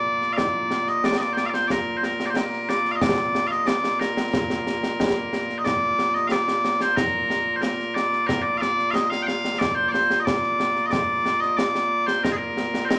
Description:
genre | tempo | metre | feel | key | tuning
scottish traditional, Scottish pipe music | 91 BPM | 2/4 | straight | Bb major | A4 = 440 Hz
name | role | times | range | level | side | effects
loud bright bagpipes | melody | 0.0-13.0 s | Bb2 to G5 | -24 LUFS | equal | none
concert snare drum and concert bass drum | drums | 0.2-13.0 s | none | -29 LUFS | equal | none
room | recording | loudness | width
wet studio reverb, RT60 0.8 s | none | -23 LUFS | mono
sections
0.0-5.7 A section; 5.7-13.0 A section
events
none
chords
none

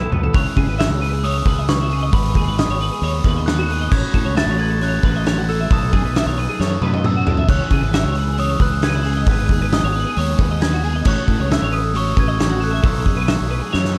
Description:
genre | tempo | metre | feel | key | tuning
math rock and midwest emo | 134 BPM | 4/4 | straight | unclear | A4 = 440 Hz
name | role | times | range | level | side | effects
glockenspiel with soft plastic mallets | melody | 0.0-14.0 s | B5 to A6 | -27 LUFS | equal | none
twelve-string electric guitar | accompaniment | 0.0-1.9 s | B2 to E3 | -38 LUFS | equal | none
twelve-string electric guitar | arpeggios | 0.0-14.0 s | E4 to E5 | -29 LUFS | equal | ensemble chorus, tape echo
growling fingered electric bass | bass | 0.0-13.9 s | G#1 to C#3 | -23 LUFS | equal | overdrive
loose indie drum kit | drums | 0.0-13.9 s | crash cymbal, hi-hat, kick drum, snare drum, toms | -22 LUFS | equal | none
overdriven semi-hollow guitar | riff | 0.3-14.0 s | B2 to A4 | -29 LUFS | equal | none
room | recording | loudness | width
little or no reverb | dark, warm production | -18 LUFS | mono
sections
0.3-14.0 A section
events
drum fill 0.0-0.3, 6.6-7.5, 13.7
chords
0.3 C#m9; 2.1 G#m7; 3.9 F#m/A; 5.7 B7sus4; 7.5 C#m7; 9.3 G#m7; 11.1 F#m7/A; 12.8 B7sus4

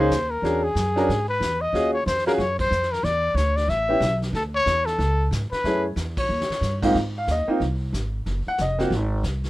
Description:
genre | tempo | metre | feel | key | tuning
jazz, small-group swing and bop | 184 BPM | 4/4 | swing 62% on 8ths | unclear | A4 = 440 Hz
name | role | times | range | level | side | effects
breathy trumpet | melody | 0.0-6.8 s | G#4 to E5 | -23 LUFS | left 1 dB | none
bright upright piano | accompaniment | 0.0-8.9 s | Ab2 to Gb5 | -22 LUFS | equal | none
upright bass | bass | 0.0-9.5 s | F1 to G#2 | -26 LUFS | equal | none
vintage brush drum kit | drums | 0.1-9.5 s | brushed snare drum, crash cymbal, hi-hat, kick drum, ride cymbal, snare drum | -34 LUFS | equal | none
room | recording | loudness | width
little or no reverb | rough home demo mix | -21 LUFS | side -17 dB against mid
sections
0.0-7.0 A section; 7.0-9.5 B section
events
band accent 2.6, 6.1; drum fill 6.3-6.6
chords
0.4 E13; 1.7 Ebm11; 3.0 Dsus2; 3.7 A9; 4.3 Dsus2; 5.6 Gbm7; 6.3 Eb7; 7.0 Ab6; 8.3 Ebm69; 8.9 Ab

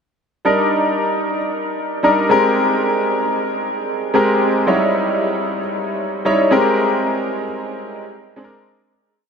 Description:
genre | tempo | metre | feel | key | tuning
pop | 114 BPM | 4/4 | swing 54% on 16ths | Eb major | A4 = 442 Hz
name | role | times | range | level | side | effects
clear grand piano | solo | 0.4-8.9 s | Gb3 to Db5 | -15 LUFS | equal | analog chorus, analog delay
room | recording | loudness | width
wet huge ambient reverb, RT60 7.4 s | dreamy mix soaked in reverb | -15 LUFS | side -6 dB against mid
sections
0.4-8.9 verse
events
fade-out 6.8-8.9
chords
0.4 Ebmaj7; 2.3 Abmaj9; 4.7 Eb7b9; 6.5 Abmaj9; 8.4 Bb9

